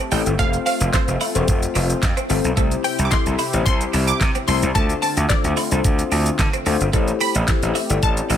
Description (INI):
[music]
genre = dance-pop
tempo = 110 BPM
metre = 4/4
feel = straight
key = unclear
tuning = A4 = 439 Hz
[part]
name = analog pluck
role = melody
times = 0.0-8.4 s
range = C5 to D6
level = -25 LUFS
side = equal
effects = chorus, tape echo
[part]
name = warm analog pad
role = sustained chords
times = 0.0-8.4 s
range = C3 to G4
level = -29 LUFS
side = left 1 dB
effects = chorus, tremolo, sidechain pumping
[part]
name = twelve-string electric guitar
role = riff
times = 0.0-8.4 s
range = A3 to E4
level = -28 LUFS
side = right 2 dB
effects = analog chorus
[part]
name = bell-like tine electric piano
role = accompaniment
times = 0.1-8.4 s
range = C4 to D5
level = -25 LUFS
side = left 10 dB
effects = wide subtle chorus, sidechain pumping
[part]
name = gritty slap bass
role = bass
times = 0.1-8.4 s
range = E1 to D3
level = -21 LUFS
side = right 1 dB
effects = overdrive, sidechain pumping
[part]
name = pop drum kit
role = drums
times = 0.1-8.4 s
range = handclaps, hi-hat, kick drum, shaker, snare drum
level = -21 LUFS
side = right 1 dB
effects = none
[sound]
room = little or no reverb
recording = none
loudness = -17 LUFS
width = side -10 dB against mid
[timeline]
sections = 0.0-8.4 A section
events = none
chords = 0.4 F; 2.6 C; 4.8 Dm7; 6.9 Am7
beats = | 0.39 0.94 1.48 2.03 | 2.57 3.12 3.66 4.21 | 4.75 5.30 5.84 6.39 | 6.93 7.48 8.03